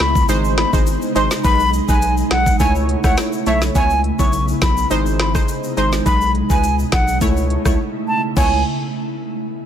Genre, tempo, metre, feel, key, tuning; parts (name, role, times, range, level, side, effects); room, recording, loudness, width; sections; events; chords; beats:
dancehall; 104 BPM; 4/4; straight; C# minor; A4 = 440 Hz
concert flute; melody; 0.0-8.6 s; E5 to C#6; -20 LUFS; equal; tape echo
ethereal airy pad; sustained chords; 0.0-8.6 s; B2 to E4; -23 LUFS; equal; ensemble chorus, built-in reverb, sidechain pumping
saturated sub bass; bass; 0.0-8.6 s; G#1 to C#2; -20 LUFS; equal
island pop drum kit; drums; 0.0-8.5 s; crash cymbal, hi-hat, kick drum, rim click, snare drum; -18 LUFS; equal; vintage 12-bit sampler grit
tube shaker; percussion; 0.2-8.6 s; -33 LUFS; left 8 dB
synth brass stab; accompaniment; 0.3-8.6 s; G#3 to C#5; -21 LUFS; right 1 dB; chorus, sidechain pumping
digital ambience; -14 LUFS; side -9 dB against mid
0.0-3.8 A section; 3.8-8.4 B section; 8.4-9.7 C section
break 7.8-8.4
0.3 G#; 1.4 B6; 2.6 A/C#; 3.8 C#m7; 4.9 G#; 6.1 B6; 7.2 A/C#; 8.4 C#m7
0.29 0.87 | 1.44 2.02 2.60 3.17 | 3.75 4.33 4.91 5.48 | 6.06 6.64 7.21 7.79 | 8.37